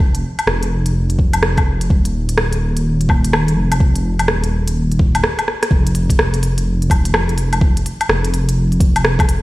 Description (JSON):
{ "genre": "future garage", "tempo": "126 BPM", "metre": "4/4", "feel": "swing 63% on 16ths", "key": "unclear", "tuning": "A4 = 439 Hz", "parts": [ { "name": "dark detuned saw bass", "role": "bass", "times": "0.0-9.4 s", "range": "Eb1 to F1", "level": "-16 LUFS", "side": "equal", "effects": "sidechain pumping" }, { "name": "electronic kick drum", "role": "drums", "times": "0.0-9.3 s", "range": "none", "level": "-14 LUFS", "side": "equal", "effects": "overdrive" }, { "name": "organic electronic drum kit", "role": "drums", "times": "0.1-9.4 s", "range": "hi-hat, rim click, woodblock", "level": "-19 LUFS", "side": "equal", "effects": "none" } ], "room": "light reverb", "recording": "played on a big sound system in a bare room, stone room reverb, vinyl crackle", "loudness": "-14 LUFS", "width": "side -18 dB against mid", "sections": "0.0-5.7 A section; 5.7-9.4 B section", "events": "break 5.2-5.7; drum fill 5.5", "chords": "none", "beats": "| 0.00 0.47 0.95 1.42 | 1.90 2.38 2.85 3.33 | 3.81 4.28 4.76 5.23 | 5.71 6.19 6.66 7.14 | 7.62 8.09 8.57 9.04" }